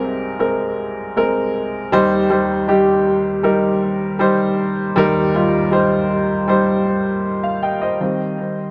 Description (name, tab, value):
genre	pop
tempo	79 BPM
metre	4/4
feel	straight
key	unclear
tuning	A4 = 438 Hz
part	clear upright piano	solo	0.0-8.7 s	C2 to G5	-18 LUFS	equal	tape echo
room	light reverb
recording	none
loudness	-18 LUFS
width	mono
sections	0.0-8.0 A section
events	none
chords	0.0 Abadd9/C; 1.9 Eb6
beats	0.41 1.17 | 1.93 2.69 3.45 4.21 | 4.97 5.73 6.49 7.25 | 8.01